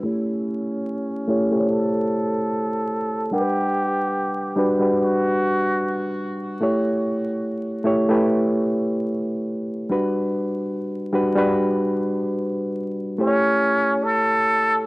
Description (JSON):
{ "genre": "hip hop", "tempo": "73 BPM", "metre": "4/4", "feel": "swing 59% on 16ths", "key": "unclear", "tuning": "A4 = 444 Hz", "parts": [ { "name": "reed electric piano", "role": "accompaniment", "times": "0.0-14.9 s", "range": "G3 to F#5", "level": "-21 LUFS", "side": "equal", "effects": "cassette tape, low-pass filter" }, { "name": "trumpet with plunger mute", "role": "melody", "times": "0.1-6.2, 13.2-14.9 s", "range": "C#4 to A4", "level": "-23 LUFS", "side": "equal", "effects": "low-pass filter, cassette tape, tape echo" } ], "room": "moderate studio reverb, RT60 0.6 s", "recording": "home recording on cassette, vinyl crackle", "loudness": "-20 LUFS", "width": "side -22 dB against mid", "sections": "0.0-13.2 A section; 13.2-14.9 B section", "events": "filter sweep 0.0-13.2", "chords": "0.0 A7; 3.3 Gmaj7; 6.6 A7; 9.9 Gmaj7; 13.2 A7" }